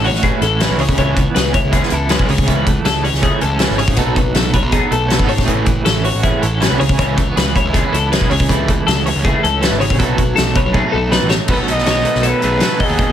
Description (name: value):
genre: math rock and midwest emo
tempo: 160 BPM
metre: 4/4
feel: straight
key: A lydian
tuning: A4 = 439 Hz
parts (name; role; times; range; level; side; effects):
- twelve-string electric guitar; accompaniment; 0.0-13.1 s; A2 to B4; -22 LUFS; right 6 dB; tremolo
- twelve-string electric guitar; arpeggios; 0.0-13.1 s; G#4 to D#5; -20 LUFS; left 7 dB; analog chorus, analog delay
- fuzz picked electric bass; bass; 0.0-13.1 s; G#1 to B2; -19 LUFS; equal; overdrive
- loose indie drum kit; drums; 0.0-13.1 s; crash cymbal, hi-hat, kick drum, snare drum; -17 LUFS; equal; none
- raw garage guitar; riff; 0.1-13.1 s; B2 to A4; -22 LUFS; right 2 dB; overdrive
- warm trumpet; melody; 11.5-13.1 s; G#4 to D#5; -18 LUFS; equal; none
room: light reverb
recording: none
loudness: -12 LUFS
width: side -10 dB against mid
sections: 0.0-11.5 A section; 11.5-13.1 B section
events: drum fill 10.8-11.5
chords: 0.0 Amaj7; 0.8 C#m7; 2.3 Amaj7/C#; 4.0 B7; 5.5 Amaj7; 6.8 C#m7; 8.3 Amaj7/C#; 10.0 B7; 11.5 B9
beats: 0.24 0.61 | 0.98 1.36 1.73 2.11 | 2.48 2.86 3.23 3.61 | 3.98 4.36 4.73 5.11 | 5.49 5.86 6.24 6.62 | 6.99 7.37 7.74 8.12 | 8.50 8.87 9.25 9.62 | 10.00 10.38 10.75 11.13 | 11.50 11.88 12.25 12.63 | 13.01